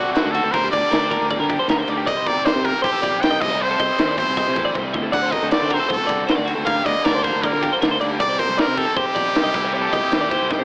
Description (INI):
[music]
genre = math rock and midwest emo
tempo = 157 BPM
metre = 4/4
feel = straight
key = G minor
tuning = A4 = 440 Hz
[part]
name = brilliant trumpet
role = melody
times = 0.0-10.6 s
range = F#4 to G5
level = -24 LUFS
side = equal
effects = none
[part]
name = twelve-string electric guitar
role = arpeggios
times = 0.0-10.6 s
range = F#4 to Eb5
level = -26 LUFS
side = equal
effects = none
[part]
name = raw garage guitar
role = riff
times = 0.0-10.6 s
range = C3 to Bb4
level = -29 LUFS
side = equal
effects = overdrive
[part]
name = modern bright fingered electric bass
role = bass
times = 0.0-10.6 s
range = A1 to D3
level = -32 LUFS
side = equal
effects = none
[part]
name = crisp fusion drum kit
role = drums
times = 0.2-10.6 s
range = crash cymbal, kick drum, ride cymbal, snare drum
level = -26 LUFS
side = equal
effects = none
[sound]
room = moderate studio reverb, RT60 0.6 s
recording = AM radio sound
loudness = -20 LUFS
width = mono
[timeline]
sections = 0.0-10.6 A section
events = drum fill 4.8-5.1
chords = 0.0 D7; 0.5 Gm/D; 2.1 Cm7; 3.4 Adim/C; 5.1 D7; 6.7 Gm/D; 8.2 Cm7; 9.5 Am7b5/C